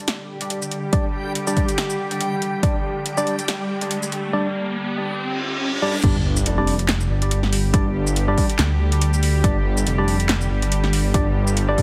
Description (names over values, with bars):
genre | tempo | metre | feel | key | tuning
deep dubstep | 141 BPM | 4/4 | swing 56% on 16ths, half-time | unclear | A4 = 440 Hz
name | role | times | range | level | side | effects
bowed-like drone | sustained chords | 0.0-11.8 s | D3 to G4 | -30 LUFS | equal | built-in reverb
riser, reverse cymbal and sub drop | sound effects | 2.2-7.7 s | none | -31 LUFS | equal | none
backwards swelling texture | texture | 0.4-4.3 s | G4 | -33 LUFS | equal | built-in reverb
deep house drum kit | drums | 0.1-11.8 s | crash cymbal, handclaps, hi-hat, shaker, snare drum | -28 LUFS | equal | overdrive, high-pass filter on hats, small room reverb, high-pass filter on snare, high-pass filter on perc, high-pass filter on cymbals
barky tine electric piano | stabs | 0.9-11.8 s | G3 to D5 | -28 LUFS | equal | vintage 12-bit sampler grit, low-pass filter, dub echo
electronic kick drum | drums | 0.9-2.7, 6.0-11.8 s | none | -23 LUFS | equal | overdrive, small room reverb
dark detuned saw bass | bass | 6.0-11.8 s | F1 to G2 | -22 LUFS | equal | tube saturation
room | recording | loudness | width
light reverb | heavily compressed radio sound, multiband compression | -21 LUFS | mono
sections
0.0-6.0 A section; 6.0-11.8 B section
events
build-up 0.0-6.0; riser 2.2-6.0; reverse cymbal 5.2-6.0; drop 6.0-11.8; impact 6.0-7.7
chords
0.0 G5